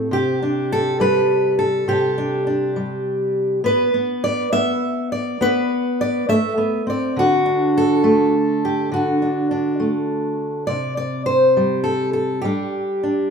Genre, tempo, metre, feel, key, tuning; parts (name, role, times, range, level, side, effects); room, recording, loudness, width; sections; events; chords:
folk, solo fingerstyle acoustic guitar; 68 BPM (dotted quarters); 6/8; straight; A4 = 440 Hz
fingerpicked steel-string acoustic guitar; solo; 0.0-13.3 s; A2 to E5; -17 LUFS; equal
moderate large studio reverb, RT60 0.9 s; band playing live in one room; -17 LUFS; side -6 dB against mid
0.0-10.7 A section; 10.7-13.3 B section
0.1 Csus2; 3.6 Asus4 (rootless); 7.2 D; 10.7 C5; 12.4 G5